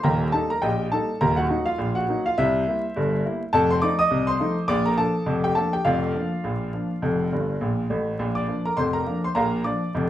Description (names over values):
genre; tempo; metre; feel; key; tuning
ragtime piano; 103 BPM; 2/4; swing 56% on 16ths; Bb major; A4 = 439 Hz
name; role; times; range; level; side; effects
warm grand piano; solo; 0.0-10.1 s; Eb1 to Eb6; -21 LUFS; equal; none
room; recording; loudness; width
wet studio reverb, RT60 0.5 s; band playing live in one room, vinyl crackle; -21 LUFS; side -12 dB against mid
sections
0.0-10.1 A section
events
grand piano fill 7.3-8.2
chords
0.0 Eb; 1.2 Ebm; 2.4 C7; 3.5 F7; 4.7 Bb; 5.9 Bb/F; 7.0 F; 8.2 Bb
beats
| 0.04 0.63 | 1.21 1.79 | 2.37 2.95 | 3.54 4.12 | 4.70 5.28 | 5.86 6.44 | 7.03 7.61 | 8.19 8.78 | 9.36 9.94